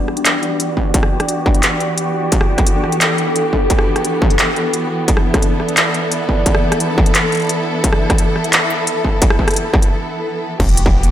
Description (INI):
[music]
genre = half-time drum and bass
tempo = 174 BPM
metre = 4/4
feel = half-time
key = E minor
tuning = A4 = 440 Hz
[part]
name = rich studio string section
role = sustained chords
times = 0.0-11.1 s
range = E3 to A4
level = -20 LUFS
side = equal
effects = sidechain pumping, low-pass filter
[part]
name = pulsing gated texture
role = texture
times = 0.0-9.9 s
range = D4 to E5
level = -22 LUFS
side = equal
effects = chorus, built-in reverb
[part]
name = industrial drum kit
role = drums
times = 0.1-11.1 s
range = crash cymbal, handclaps, hi-hat, rim click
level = -18 LUFS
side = equal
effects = studio reverb
[part]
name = electronic kick drum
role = drums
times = 0.8-10.9 s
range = none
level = -15 LUFS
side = equal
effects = distortion, studio reverb
[part]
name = long sustained 808-style bass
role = bass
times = 10.6-11.1 s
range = E1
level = -14 LUFS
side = equal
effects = none
[sound]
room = light reverb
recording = none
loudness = -13 LUFS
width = side -11 dB against mid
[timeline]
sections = 0.0-10.6 A section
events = build-up 0.0-10.6; filter sweep on string section 0.0-10.6; break 9.9-10.6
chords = 0.0 Em